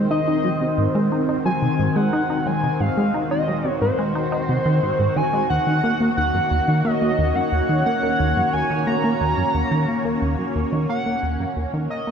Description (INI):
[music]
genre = ambient, sequencer-driven space music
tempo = 89 BPM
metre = 4/4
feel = straight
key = Eb dorian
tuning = A4 = 440 Hz
[part]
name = lush unison pad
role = sustained chords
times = 0.0-12.1 s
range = Bb2 to Db5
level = -24 LUFS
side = equal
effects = chorus, phaser
[part]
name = plucky analog bass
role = riff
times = 0.0-12.1 s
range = Eb2 to Eb4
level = -22 LUFS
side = equal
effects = tape echo
[part]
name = pulse-width lead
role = melody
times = 0.1-12.1 s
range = C5 to Bb5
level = -24 LUFS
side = equal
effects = chorus, cassette tape, tape echo
[sound]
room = wet plate reverb, RT60 3.2 s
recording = none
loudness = -18 LUFS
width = side -7 dB against mid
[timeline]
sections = 0.0-12.1 A section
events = fade-out 9.1-12.1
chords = 0.0 Abadd9; 5.5 Ebm7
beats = | 0.11 0.78 1.46 2.13 | 2.80 3.48 4.15 4.83 | 5.50 6.17 6.85 7.52 | 8.20 8.87 9.54 10.22 | 10.89 11.57